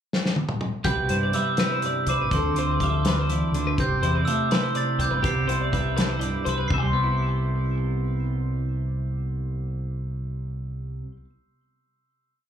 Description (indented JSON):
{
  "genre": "math rock and midwest emo",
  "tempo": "82 BPM (dotted quarters)",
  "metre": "6/8",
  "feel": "straight",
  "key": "C major",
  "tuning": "A4 = 439 Hz",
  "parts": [
    { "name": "loose indie drum kit", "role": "drums", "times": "0.1-6.8 s", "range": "hi-hat, kick drum, snare drum, toms", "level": "-27 LUFS", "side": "left 1 dB", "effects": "none" },
    { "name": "glockenspiel with hard plastic mallets", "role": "melody", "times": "0.8-11.0 s", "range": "C6 to C7", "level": "-29 LUFS", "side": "right 3 dB", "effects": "slapback echo, digital delay" },
    { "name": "twelve-string electric guitar", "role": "accompaniment", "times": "0.8-11.3 s", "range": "G2 to B4", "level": "-27 LUFS", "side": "right 3 dB", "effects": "analog chorus" },
    { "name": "growling fingered electric bass", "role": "bass", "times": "0.8-11.0 s", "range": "G1 to G2", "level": "-28 LUFS", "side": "left 1 dB", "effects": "overdrive" },
    { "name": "twelve-string electric guitar", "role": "arpeggios", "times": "0.9-11.1 s", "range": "G4 to C6", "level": "-30 LUFS", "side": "left 7 dB", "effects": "slapback echo, digital delay" }
  ],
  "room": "small room ambience",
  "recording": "live gig heard through the venue's PA, club ambience",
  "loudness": "-22 LUFS",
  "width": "side -9 dB against mid",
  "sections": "0.0-0.8 pickup bar; 0.8-6.7 A section; 6.7-9.6 final chord",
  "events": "drum fill 0.1-0.8",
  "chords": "0.0 N.C.; 0.8 Cmaj7; 2.3 Dm7; 3.8 Am7; 5.2 Cmaj7"
}